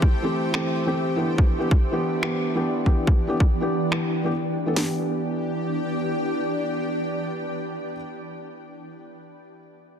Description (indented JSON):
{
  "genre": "future bass",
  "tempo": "142 BPM",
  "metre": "4/4",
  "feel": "swing 56% on 16ths, half-time",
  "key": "E minor",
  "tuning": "A4 = 438 Hz",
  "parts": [
    { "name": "shimmering ambient pad", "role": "sustained chords", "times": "0.0-7.9 s", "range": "E3 to C5", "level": "-28 LUFS", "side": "equal", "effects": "chorus, built-in reverb, sidechain pumping" },
    { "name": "trap drum kit", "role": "drums", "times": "0.0-4.9 s", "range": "hi-hat, kick drum, snare drum", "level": "-19 LUFS", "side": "equal", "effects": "none" },
    { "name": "felt-muted upright piano", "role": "accompaniment", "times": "0.2-8.0 s", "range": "E3 to A4", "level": "-26 LUFS", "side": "equal", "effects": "sidechain pumping, tape echo" },
    { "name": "electronic finger snaps", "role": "drums", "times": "0.5-4.0 s", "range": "none", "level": "-30 LUFS", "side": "right 1 dB", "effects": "soft clipping on snare, low-pass filter on snare" }
  ],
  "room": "light reverb",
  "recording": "dense, heavily limited modern master",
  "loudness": "-22 LUFS",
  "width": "side -8 dB against mid",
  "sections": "0.0-4.8 A section; 4.8-8.1 B section",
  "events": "none",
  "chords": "0.0 Am7; 1.4 Em7"
}